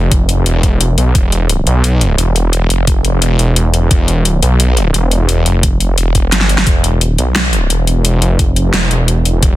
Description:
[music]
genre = dark technical drum and bass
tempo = 174 BPM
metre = 4/4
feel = straight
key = E phrygian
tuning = A4 = 442 Hz
[part]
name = snarling distorted saw bass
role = bass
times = 0.0-9.6 s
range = E1 to B1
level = -12 LUFS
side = equal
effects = none
[part]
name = dubstep drum kit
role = drums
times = 0.1-9.5 s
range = hi-hat, snare drum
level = -16 LUFS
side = left 2 dB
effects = small room ambience
[part]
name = electronic kick drum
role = drums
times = 0.1-9.5 s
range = none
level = -13 LUFS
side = equal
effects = overdrive, small room ambience
[sound]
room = little or no reverb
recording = dense, heavily limited modern master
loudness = -10 LUFS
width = side -15 dB against mid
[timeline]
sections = 0.0-9.6 A section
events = drum fill 6.3-6.7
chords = none

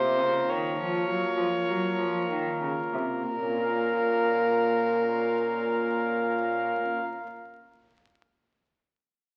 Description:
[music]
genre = classical, baroque-style sonata movement with continuo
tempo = 60-70 BPM (dotted quarters)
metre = 12/8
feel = straight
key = Bb minor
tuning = A4 = 440 Hz
[part]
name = rich violin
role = melody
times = 0.0-6.7 s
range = Bb4 to Db5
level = -30 LUFS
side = equal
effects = none
[part]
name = pipe organ, principal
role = accompaniment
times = 0.0-7.0 s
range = Bb2 to F5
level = -31 LUFS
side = equal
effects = none
[part]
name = rich cello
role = bass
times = 0.0-6.7 s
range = Bb2 to Gb3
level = -35 LUFS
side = equal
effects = none
[sound]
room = wet recital hall reverb, RT60 1.4 s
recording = very old 78 rpm record, vinyl crackle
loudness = -27 LUFS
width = mono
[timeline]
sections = 0.0-3.3 A section; 3.3-7.2 B section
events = slowing down 0.0-3.3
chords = 0.0 Bbm

